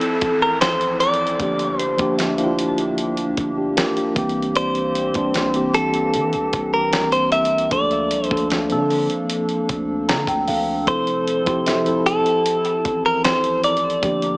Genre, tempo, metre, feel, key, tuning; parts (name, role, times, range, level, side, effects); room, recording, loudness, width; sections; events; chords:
contemporary R&B; 76 BPM; 4/4; straight; A4 = 435 Hz
direct-recorded clean electric guitar; melody; 0.0-14.4 s; A4 to E5; -20 LUFS; equal; digital delay
mellow tine electric piano; accompaniment; 0.0-14.4 s; E3 to Bb5; -22 LUFS; equal; medium stereo tremolo
hollow soft pad; sustained chords; 0.0-14.4 s; E3 to A4; -28 LUFS; equal; chorus
dusty soul sampler-style drum kit; drums; 0.0-14.4 s; hi-hat, kick drum, snare drum; -24 LUFS; equal
downlifter; sound effects; 0.0-4.6 s; -33 LUFS; equal
soft synth bell; texture; 0.0-6.1, 11.7-13.2 s; C5 to A5; -31 LUFS; left 1 dB; chorus, phaser, digital delay
long sustained 808-style bass; bass; 0.2-14.4 s; F1 to E3; -33 LUFS; equal
light reverb, digital ambience; small speaker sound; -17 LUFS; side -27 dB against mid
0.0-14.4 A section
tine electric piano fill 9.7-10.9
0.0 Fmaj7; 1.4 Gm7; 4.2 C7; 7.7 Bbmaj7; 10.9 Fmaj7